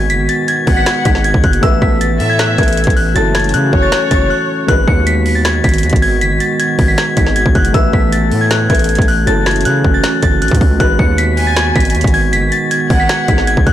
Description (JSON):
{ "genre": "hip hop, trap", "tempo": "157 BPM", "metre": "4/4", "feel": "half-time", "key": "G# phrygian", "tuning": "A4 = 440 Hz", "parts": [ { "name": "glassy synth bell", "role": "melody", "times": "0.0-13.7 s", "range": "E6 to C#7", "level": "-16 LUFS", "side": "left 2 dB", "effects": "chorus, ping-pong delay" }, { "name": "dark concert grand piano", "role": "accompaniment", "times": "0.0-13.7 s", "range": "F#3 to E5", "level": "-22 LUFS", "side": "left 3 dB", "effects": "none" }, { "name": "dark analog pad", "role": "sustained chords", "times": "0.0-13.7 s", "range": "D#3 to A4", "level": "-19 LUFS", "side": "right 3 dB", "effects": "chorus" }, { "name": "distorted 808-style bass", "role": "bass", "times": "0.0-13.7 s", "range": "F#1 to C#3", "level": "-16 LUFS", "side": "equal", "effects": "distortion" }, { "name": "trap drum kit", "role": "drums", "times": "0.1-13.7 s", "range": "finger snaps, hi-hat, kick drum, snare drum", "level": "-15 LUFS", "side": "equal", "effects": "soft clipping on snare" }, { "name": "rich studio violin section", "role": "second line", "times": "0.7-4.6, 11.4-13.4 s", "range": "C#5 to G#5", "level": "-21 LUFS", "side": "left 1 dB", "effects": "ping-pong delay" } ], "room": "digital ambience", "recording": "blown-out, overdriven recording, overdrive", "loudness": "-10 LUFS", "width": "side -12 dB against mid", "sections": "0.0-4.7 A section; 4.7-13.7 A section", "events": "break 4.3-4.7", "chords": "0.0 G#m7; 1.6 Asus2; 3.2 F#m7; 4.7 G#m7; 7.7 Asus2; 9.3 F#m7; 10.8 G#m7", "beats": "| 0.10 0.48 0.86 1.25 | 1.63 2.01 2.39 2.77 | 3.16 3.54 3.92 4.30 | 4.69 5.07 5.45 5.83 | 6.21 6.60 6.98 7.36 | 7.74 8.12 8.51 8.89 | 9.27 9.65 10.04 10.42 | 10.80 11.18 11.56 11.95 | 12.33 12.71 13.09 13.47" }